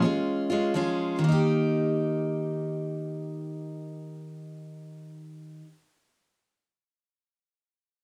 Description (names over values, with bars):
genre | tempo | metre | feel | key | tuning
folk | 41 BPM (dotted quarters) | 6/8 | straight | Eb mixolydian | A4 = 441 Hz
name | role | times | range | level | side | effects
picked steel-string acoustic guitar | accompaniment | 0.0-5.7 s | Eb3 to G4 | -29 LUFS | equal | none
room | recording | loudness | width
wet studio reverb, RT60 0.7 s | home recording on cassette | -28 LUFS | mono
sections
0.0-1.2 A section; 1.2-4.1 B section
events
slowing down 0.0-1.2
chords
0.0 Bbm7 (rootless); 1.2 Eb